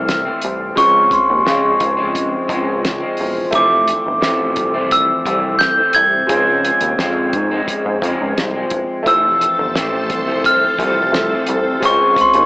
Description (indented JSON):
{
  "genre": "indie pop, bedroom pop",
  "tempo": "87 BPM",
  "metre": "4/4",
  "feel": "straight",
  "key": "F major",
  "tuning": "A4 = 440 Hz",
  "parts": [
    { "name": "glockenspiel with hard plastic mallets", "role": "melody", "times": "0.0-12.5 s", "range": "C6 to Ab6", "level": "-15 LUFS", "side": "equal", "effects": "lush chorus" },
    { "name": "bright upright piano", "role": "accompaniment", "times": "0.0-12.5 s", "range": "F3 to C5", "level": "-25 LUFS", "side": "right 1 dB", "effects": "cassette tape" },
    { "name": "electric guitar through a small old amp", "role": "accompaniment", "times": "0.0-12.5 s", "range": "F2 to C4", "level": "-21 LUFS", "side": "left 1 dB", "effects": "lush chorus, vibrato effect" },
    { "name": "chorused synth bass", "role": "bass", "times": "0.0-12.5 s", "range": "E1 to Db3", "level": "-22 LUFS", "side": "equal", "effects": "none" },
    { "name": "cloth-damped thuddy drum kit", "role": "drums", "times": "0.1-12.5 s", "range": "hi-hat, kick drum, snare drum", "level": "-22 LUFS", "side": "equal", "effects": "none" },
    { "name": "string machine, full ensemble", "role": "sustained chords", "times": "9.1-12.5 s", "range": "Ab4 to A5", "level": "-25 LUFS", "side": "equal", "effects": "ensemble chorus" }
  ],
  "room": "light reverb",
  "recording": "AM radio sound",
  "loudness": "-13 LUFS",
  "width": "side -22 dB against mid",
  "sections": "0.0-12.5 A section",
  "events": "none",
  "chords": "0.0 Fmaj7; 0.8 Dbmaj7; 3.5 Fmaj7; 6.3 Dbmaj7; 9.1 Fmaj7; 11.8 Dbmaj7"
}